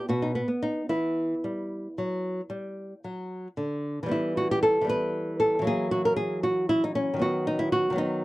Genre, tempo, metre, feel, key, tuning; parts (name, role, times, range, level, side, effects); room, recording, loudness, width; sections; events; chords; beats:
classical, baroque-style dance for nylon-string guitar; 77 BPM (dotted quarters); 12/8; rubato; E minor; A4 = 438 Hz
nylon-string guitar; solo; 0.0-8.2 s; B2 to B4; -25 LUFS; equal
light reverb; dry, close 1970s-style studio recording; -25 LUFS; side -18 dB against mid
0.0-4.1 A section; 4.1-8.2 B section
0.0 N.C.; 0.9 Em; 5.7 F#7/E; 7.2 B/D#
0.09 | 0.90 1.71 2.50 3.30 | 4.11 4.89 5.66 6.43 | 7.21 7.97